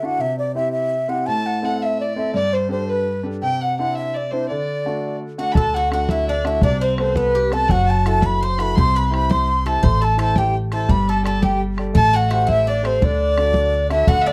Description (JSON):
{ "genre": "celtic folk, Celtic jig", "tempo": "112 BPM (dotted quarters)", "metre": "6/8", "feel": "straight", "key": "D mixolydian", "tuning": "A4 = 435 Hz", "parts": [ { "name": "baroque flute", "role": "melody", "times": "0.0-14.3 s", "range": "B4 to C6", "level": "-22 LUFS", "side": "equal", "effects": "none" }, { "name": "clear concert grand piano", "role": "accompaniment", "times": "0.0-14.3 s", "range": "G2 to D5", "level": "-27 LUFS", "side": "equal", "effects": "none" }, { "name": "rich fiddle", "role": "second line", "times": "1.3-14.3 s", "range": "B4 to C6", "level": "-31 LUFS", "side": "equal", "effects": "none" }, { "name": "Irish bouzouki", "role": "second line", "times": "5.4-14.3 s", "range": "B3 to C5", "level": "-33 LUFS", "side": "equal", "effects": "none" }, { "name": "upright bass", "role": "bass", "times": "5.6-14.3 s", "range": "F#1 to D2", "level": "-24 LUFS", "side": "equal", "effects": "none" }, { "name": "bodhran", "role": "percussion", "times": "5.6-14.3 s", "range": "none", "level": "-22 LUFS", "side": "equal", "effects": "none" } ], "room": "moderate studio reverb, RT60 0.5 s", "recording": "dark, warm production", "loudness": "-19 LUFS", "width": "mono", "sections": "0.0-5.6 A section; 5.6-14.1 A section", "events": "none", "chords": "0.2 C; 1.3 Am; 2.3 Gsus2; 3.4 Cadd9; 4.5 D; 6.6 Amadd9/C; 7.7 Am69/F#; 8.8 C; 9.8 Am; 10.9 Gsus2; 12.0 Am7; 13.0 D", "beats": "| 0.20 0.74 | 1.28 1.81 | 2.35 2.88 | 3.42 3.95 | 4.49 5.02 | 5.56 6.09 | 6.62 7.16 | 7.69 8.23 | 8.76 9.29 | 9.82 10.36 | 10.89 11.42 | 11.95 12.49 | 13.02 13.55 | 14.08" }